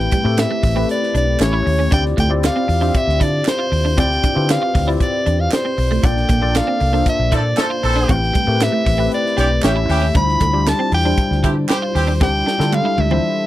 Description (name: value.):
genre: polished 1980s jazz-funk pop.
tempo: 117 BPM.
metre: 4/4.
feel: straight.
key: unclear.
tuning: A4 = 440 Hz.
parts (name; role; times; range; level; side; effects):
edgy soprano saxophone; melody; 0.0-13.5 s; C5 to B5; -20 LUFS; equal; none.
barky tine electric piano; accompaniment; 0.0-13.5 s; G3 to F5; -21 LUFS; left 3 dB; analog chorus.
vintage muted fingered electric bass; bass; 0.0-13.2 s; A1 to D3; -19 LUFS; equal; none.
crisp fusion drum kit; drums; 0.0-13.2 s; hi-hat, kick drum, snare drum, toms; -21 LUFS; equal; none.
electric guitar at the edge of break-up; riff; 0.1-13.2 s; G3 to F4; -24 LUFS; right 4 dB; ensemble chorus.
group handclap; percussion; 0.4-12.8 s; none; -28 LUFS; right 8 dB; none.
warm horn section; second line; 7.3-12.1 s; E3 to A4; -22 LUFS; right 1 dB; none.
room: little or no reverb.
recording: none.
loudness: -14 LUFS.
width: side -14 dB against mid.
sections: 0.0-13.5 A section.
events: drum fill 12.2-13.5; band accent 13.2.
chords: 0.0 Am9; 1.4 A7; 1.9 Dm11; 6.0 Bbmaj7; 8.1 Am9; 9.6 A7; 10.2 Dm11.